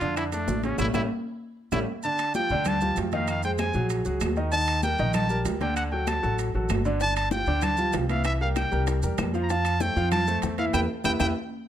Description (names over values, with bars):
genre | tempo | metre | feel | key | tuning
latin, salsa | 193 BPM | 4/4 | straight | unclear | A4 = 442 Hz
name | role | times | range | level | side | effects
bright trumpet | melody | 0.0-11.3 s | C#4 to Bb5 | -28 LUFS | equal | plate reverb
clear upright piano | accompaniment | 0.0-11.3 s | C#3 to F5 | -29 LUFS | right 1 dB | none
upright bass | bass | 0.0-11.3 s | G1 to F2 | -28 LUFS | equal | none
congas | percussion | 0.0-11.3 s | none | -33 LUFS | left 2 dB | none
maracas | percussion | 0.0-11.3 s | none | -42 LUFS | right 6 dB | none
timbales | percussion | 0.0-11.3 s | none | -35 LUFS | right 9 dB | none
bongos | percussion | 0.2-1.8, 7.0-11.3 s | none | -35 LUFS | left 8 dB | none
claves | percussion | 0.2-11.3 s | none | -39 LUFS | left 4 dB | none
room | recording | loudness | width
light reverb | close, detailed microphones | -23 LUFS | side -10 dB against mid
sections
0.0-2.0 A section; 2.0-11.7 B section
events
band accent 0.8-2.0, 10.7-11.7; drum fill 1.1-2.0, 10.7-11.7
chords
0.0 Bbmaj7 (rootless); 0.8 A7; 2.0 Gsus2; 3.3 Fm7; 3.9 F#69/A#; 4.5 Ebmaj7; 5.8 D; 7.0 Gsus2; 8.3 C7; 9.5 F; 10.7 Em